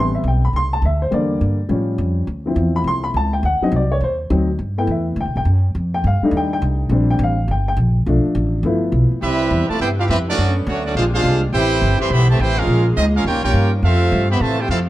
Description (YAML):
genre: jazz, big band swing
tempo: 208 BPM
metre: 4/4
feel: swing 62% on 8ths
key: C major from 9.2 s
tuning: A4 = 443 Hz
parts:
  - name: warm upright piano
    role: accompaniment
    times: 0.0-9.2 s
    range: C3 to C6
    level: -20 LUFS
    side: left 2 dB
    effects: none
  - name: upright bass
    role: bass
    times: 0.0-14.9 s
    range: G1 to A2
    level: -18 LUFS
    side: equal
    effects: none
  - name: bright trumpet section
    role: melody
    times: 9.2-14.8 s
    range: A3 to C6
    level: -21 LUFS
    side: right 1 dB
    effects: none
  - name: clear trombone section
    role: second line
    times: 9.2-14.8 s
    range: C3 to G4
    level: -21 LUFS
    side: right 2 dB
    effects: none
  - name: clear saxophone section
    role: sustained chords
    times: 9.2-14.9 s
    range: C3 to B4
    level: -27 LUFS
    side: left 1 dB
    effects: none
room: light reverb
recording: dark, warm production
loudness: -15 LUFS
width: side -15 dB against mid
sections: 0.0-9.2 A section; 9.2-14.9 B section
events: upright piano solo 0.0-9.2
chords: 0.0 Am9; 1.1 Em7b5; 1.7 Aaug7; 2.3 Dm9; 3.4 D7b9; 4.6 G6; 5.8 F13; 6.9 Bb6; 8.1 Bm7b5; 8.6 G13; 9.2 Cmaj7; 10.4 Bm9; 11.0 Bb9; 11.5 Am9; 12.7 Bbm7; 13.3 Eb9; 13.8 Fmaj7